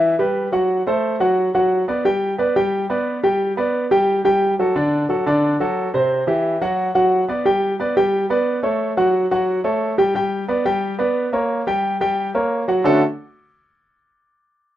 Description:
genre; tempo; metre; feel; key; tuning
jazz; 178 BPM; 4/4; straight; D major; A4 = 440 Hz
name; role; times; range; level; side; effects
clear grand piano; solo; 0.0-13.0 s; C3 to G5; -16 LUFS; equal; none
room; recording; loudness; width
light reverb; rough home demo mix, lossy compression artefacts; -17 LUFS; side -12 dB against mid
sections
0.0-7.5 A section; 7.5-12.9 B section; 12.9-14.2 C section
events
none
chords
0.0 Emadd9; 0.7 D6 (rootless); 2.0 G; 4.1 Gsus2; 4.8 D; 6.1 C; 6.8 D6; 7.5 Gadd9; 8.8 F#m; 10.2 G; 11.5 Gdim; 12.9 Dmaj7

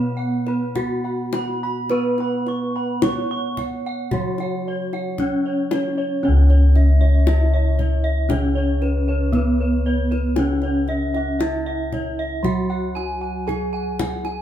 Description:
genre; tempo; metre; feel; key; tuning
Javanese gamelan; 51-58 BPM; 4/4; straight; C# slendro; A4 = 442 Hz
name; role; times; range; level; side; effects
gamelan-type bronze metallophone; melody; 0.0-14.4 s; B3-25c to C#5; -25 LUFS; equal; none
gamelan-type bronze metallophone; accompaniment; 0.0-14.4 s; C#3 to B3-25c; -30 LUFS; right 4 dB; none
gamelan-type bossed gongs; arpeggios; 0.0-14.3 s; B4-25c to C#6; -30 LUFS; left 1 dB; none
gamelan-type bronze metallophone; arpeggios; 0.0-14.4 s; B4-25c to C#6; -30 LUFS; right 2 dB; none
gamelan-type bossed gongs; bass; 0.0-14.4 s; C#2 to B4-25c; -20 LUFS; equal; none
kendang; percussion; 0.5-14.4 s; none; -26 LUFS; left 3 dB; none
room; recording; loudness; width
wet studio reverb, RT60 0.6 s; band playing live in one room; -18 LUFS; side -11 dB against mid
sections
0.0-6.2 A section; 6.2-14.4 B section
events
none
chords
none

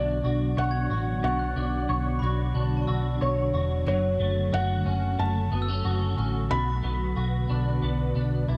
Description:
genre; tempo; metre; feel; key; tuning
dream pop; 91 BPM; 4/4; straight; B dorian; A4 = 441 Hz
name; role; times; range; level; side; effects
felt-muted upright piano; melody; 0.0-8.6 s; C#5 to B5; -33 LUFS; equal; analog delay
ethereal airy pad; sustained chords; 0.0-8.6 s; D3 to B4; -34 LUFS; equal; ensemble chorus, built-in reverb
clean electric guitar; arpeggios; 0.0-8.6 s; B2 to C#5; -34 LUFS; equal; ensemble chorus, analog delay
hollow-body short-scale picked electric bass; bass; 0.0-8.6 s; E1 to B1; -29 LUFS; equal; none
glockenspiel with hard plastic mallets; texture; 0.0-6.8 s; A5 to A6; -44 LUFS; equal; analog delay
room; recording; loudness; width
moderate spring reverb, RT60 1.8 s, studio reverb; echo-heavy mix; -26 LUFS; mono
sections
0.0-8.6 A section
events
none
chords
0.0 Bmadd9; 3.9 F#m; 6.5 Bm

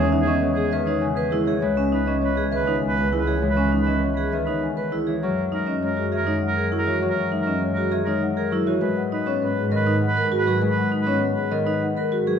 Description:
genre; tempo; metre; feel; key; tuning
classical, minimalist pattern music; 100 BPM; 3/4; straight; F# mixolydian; A4 = 440 Hz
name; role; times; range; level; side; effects
marimba with soft mallets; melody; 0.0-12.4 s; G#4 to G#5; -26 LUFS; left 10 dB; none
clear oboe; second line; 0.0-12.2 s; G#4 to B4; -28 LUFS; right 4 dB; none
Celtic harp; accompaniment; 0.0-12.4 s; C#3 to C#4; -26 LUFS; left 2 dB; none
vibraphone with medium hard mallets; arpeggios; 0.0-12.4 s; C#4 to B4; -26 LUFS; right 4 dB; none
rich chamber double bass section; bass; 0.0-12.3 s; C#2 to G#2; -27 LUFS; right 3 dB; none
room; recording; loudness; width
moderate recital hall reverb, RT60 1.3 s; dark, warm production; -20 LUFS; side -8 dB against mid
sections
0.0-12.4 A section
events
none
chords
0.0 Emaj7; 1.6 C#m7; 5.2 F#9; 8.8 G#m9

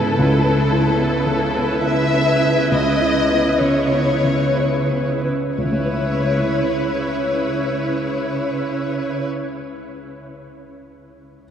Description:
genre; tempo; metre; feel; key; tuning
cinematic, emotional film score for orchestra; 58-75 BPM; 3/4; rubato; C# minor; A4 = 441 Hz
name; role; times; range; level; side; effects
warm symphonic violin section; melody; 0.0-9.3 s; A4 to E5; -22 LUFS; left 3 dB; none
rich symphonic viola section; accompaniment; 0.0-9.3 s; E4 to B4; -24 LUFS; right 2 dB; none
warm grand piano; accompaniment; 0.0-11.5 s; C#2 to E5; -22 LUFS; left 1 dB; none
dark studio cello section; bass; 0.0-9.3 s; C#3; -23 LUFS; right 2 dB; none
room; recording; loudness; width
wet cathedral reverb, RT60 5.7 s; none; -16 LUFS; side -8 dB against mid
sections
0.0-5.6 A section; 5.6-8.5 B section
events
slowing down 0.0-5.6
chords
0.2 Aadd9/C#; 5.6 C#m7

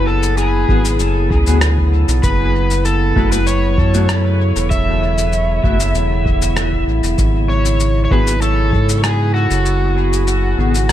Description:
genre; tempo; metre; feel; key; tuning
ambient dub; 97 BPM; 4/4; straight; unclear; A4 = 440 Hz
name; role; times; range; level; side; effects
overdriven slide guitar; melody; 0.0-10.9 s; F#4 to E5; -20 LUFS; left 1 dB; dub echo
warbly tape-like pad; sustained chords; 0.0-10.9 s; C#3 to G#5; -21 LUFS; equal; chorus, built-in reverb
round analog bass; bass; 0.0-10.9 s; E1 to G#2; -16 LUFS; equal; none
electronic cabasa and rim click; drums; 0.2-10.9 s; none; -23 LUFS; left 2 dB; dub echo
mellow electric guitar; stabs; 0.7-10.7 s; A3 to G#4; -26 LUFS; left 3 dB; none
electronic kick drum; drums; 0.7-8.9 s; none; -19 LUFS; equal; none
room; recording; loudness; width
light reverb; none; -13 LUFS; side -12 dB against mid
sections
0.0-10.9 A section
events
kick drops out 9.7-10.9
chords
0.0 G#m7b5; 2.2 F#m7; 7.2 G#m7

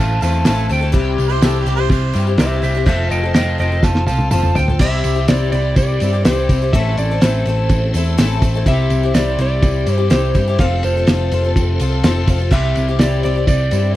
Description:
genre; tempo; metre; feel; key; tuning
folk rock and heartland rock; 124 BPM; 4/4; straight; C major; A4 = 440 Hz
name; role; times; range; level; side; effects
electric slide guitar; melody; 0.0-13.9 s; C5 to A5; -21 LUFS; right 2 dB; slapback echo
picked twelve-string acoustic guitar; accompaniment; 0.0-13.9 s; A2 to A4; -22 LUFS; left 7 dB; none
tonewheel organ; sustained chords; 0.0-14.0 s; C4 to C5; -30 LUFS; right 3 dB; chorus vibrato, fast rotary speaker
hollow-body short-scale picked electric bass; bass; 0.0-13.9 s; F1 to G2; -17 LUFS; equal; none
cloth-damped thuddy drum kit; drums; 0.2-13.8 s; crash cymbal, kick drum, ride cymbal, snare drum, toms; -18 LUFS; equal; none
tambourine; percussion; 0.2-13.8 s; none; -37 LUFS; right 21 dB; none
mellow harmonica; second line; 1.3-2.3 s; G4 to C5; -24 LUFS; right 14 dB; slapback echo
room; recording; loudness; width
light reverb; dry, close 1970s-style studio recording; -13 LUFS; side -15 dB against mid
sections
0.0-4.8 A section; 4.8-14.0 B section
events
electric slide guitar solo 0.0-4.8; drum fill 3.8-4.8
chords
0.0 Am; 0.9 C; 2.9 F; 4.8 C; 6.7 Am; 8.7 C; 10.6 F; 12.5 C

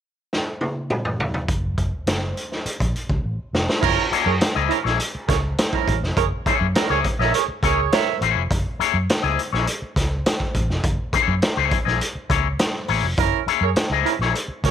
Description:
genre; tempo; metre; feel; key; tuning
funk; 103 BPM; 4/4; straight; F# mixolydian; A4 = 440 Hz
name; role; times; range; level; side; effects
raw garage drum kit; drums; 0.3-14.7 s; crash cymbal, hi-hat, kick drum, snare drum, toms; -22 LUFS; equal; none
vintage muted fingered electric bass; bass; 1.5-14.7 s; E#1 to F#2; -24 LUFS; equal; none
warm horn section; second line; 3.8-8.2, 13.2-14.7 s; C#4 to E5; -23 LUFS; right 16 dB; none
electric guitar with an envelope filter; accompaniment; 4.1-14.3 s; A#3 to D#5; -22 LUFS; left 14 dB; none
room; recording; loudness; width
studio reverb; 1960s-style stereo with parts hard left and right; -19 LUFS; side -9 dB against mid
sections
0.0-1.5 A section; 1.5-3.8 B section; 3.8-14.7 C section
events
drum fill 0.3-1.5, 3.2-3.8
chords
0.0 N.C.; 3.8 F#9

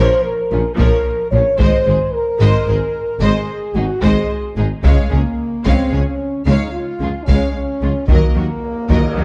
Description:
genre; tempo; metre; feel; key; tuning
cinematic, epic orchestral film score; 74 BPM (dotted quarters); 12/8; straight; unclear; A4 = 440 Hz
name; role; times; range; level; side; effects
warm symphonic violin section; melody; 0.0-9.2 s; F4 to F5; -31 LUFS; equal; none
rich studio violin section; second line; 0.0-9.2 s; Db4 to Db5; -29 LUFS; equal; none
warm symphonic viola section; accompaniment; 0.0-9.2 s; F3 to Ab3; -26 LUFS; equal; none
warm French horn section; sustained chords; 0.0-9.2 s; Ab3 to Db5; -22 LUFS; equal; none
mellow tuba; bass; 0.0-9.2 s; Ab1 to Eb2; -26 LUFS; equal; none
rich symphonic cello section; bass; 0.0-9.2 s; Ab2 to Eb3; -25 LUFS; equal; none
rich symphonic double bass section; bass; 0.0-9.2 s; Ab1 to Eb2; -23 LUFS; equal; none
taiko ensemble; drums; 0.8-9.2 s; none; -20 LUFS; equal; none
cymbal swell; sound effects; 8.7-9.2 s; none; -33 LUFS; equal; none
room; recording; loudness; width
moderate recital hall reverb, RT60 1.5 s; dark, warm production; -16 LUFS; mono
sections
0.0-9.2 A section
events
cymbal swell 8.7-9.2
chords
0.0 Bbm; 1.6 Ab; 4.8 Db; 8.1 Ebm

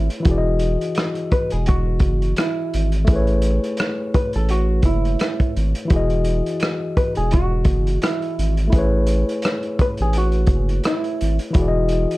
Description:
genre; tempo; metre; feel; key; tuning
lo-fi hip hop; 85 BPM; 4/4; swing 57% on 16ths; E major; A4 = 440 Hz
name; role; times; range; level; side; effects
hollow-body jazz guitar; melody; 0.0-11.4 s; E4 to B4; -26 LUFS; right 2 dB; analog delay
mellow tine electric piano; accompaniment; 0.0-12.2 s; E3 to D#5; -24 LUFS; left 2 dB; overdrive
saturated sub bass; bass; 0.0-12.1 s; E1 to A1; -19 LUFS; equal; none
vintage drum kit; drums; 0.1-12.2 s; hi-hat, kick drum, rim click; -21 LUFS; equal; none
room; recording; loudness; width
light reverb; dark, warm production; -17 LUFS; side -19 dB against mid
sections
0.0-12.2 A section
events
none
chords
0.3 Emaj9; 3.1 Amaj7; 5.9 Emaj9; 8.7 Amaj7; 11.6 Emaj9

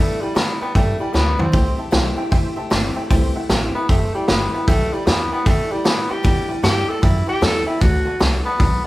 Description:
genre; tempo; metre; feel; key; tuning
rockabilly; 153 BPM; 4/4; swing 64% on 8ths; G major; A4 = 439 Hz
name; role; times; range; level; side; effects
warm tenor saxophone; melody; 0.0-8.8 s; G3 to A4; -22 LUFS; equal; none
picked steel-string acoustic guitar; accompaniment; 0.0-8.9 s; G2 to G4; -26 LUFS; left 1 dB; none
tack piano; accompaniment; 0.0-8.9 s; A4 to A5; -31 LUFS; right 3 dB; none
upright bass; bass; 0.0-8.9 s; F#1 to B2; -23 LUFS; equal; none
vintage drum kit; drums; 0.4-8.7 s; hi-hat, kick drum, snare drum, toms; -18 LUFS; equal; none
room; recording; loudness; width
moderate large studio reverb, RT60 1.0 s; band playing live in one room; -16 LUFS; side -18 dB against mid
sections
0.0-8.9 A section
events
tenor saxophone solo 0.0-8.9; drum fill 1.1-1.5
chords
0.0 G6; 1.5 C6; 4.7 G6; 7.8 D6

